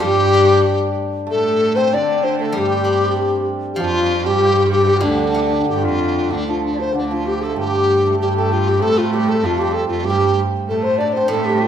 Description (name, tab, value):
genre	chinese traditional, Chinese chamber ensemble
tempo	96 BPM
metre	2/4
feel	rubato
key	D yu mode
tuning	A4 = 441 Hz
part	mellow hollow large dizi	melody	0.0-11.7 s	D4 to D5	-18 LUFS	left 1 dB	none
part	hammered dulcimer	second line	0.0-11.7 s	D3 to D4	-23 LUFS	right 4 dB	none
part	mellow xiao	second line	0.0-11.7 s	D4 to D5	-23 LUFS	left 8 dB	none
part	rich cello	second line	0.0-11.7 s	D2 to D3	-22 LUFS	right 3 dB	none
part	steel-string zither	accompaniment	0.0-6.9, 11.3-11.7 s	A2 to D4	-24 LUFS	left 2 dB	none
room	moderate recital hall reverb, RT60 1.2 s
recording	minimal, uncompressed stereo recording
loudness	-15 LUFS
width	side -9 dB against mid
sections	0.0-6.3 A section; 6.3-11.7 B section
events	none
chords	none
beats	| 0.01 0.65 | 1.29 1.94 | 2.56 3.17 | 3.79 4.42 | 5.04 5.68 | 6.31 6.94 | 7.57 8.19 | 8.80 9.42 | 10.04 10.67 | 11.31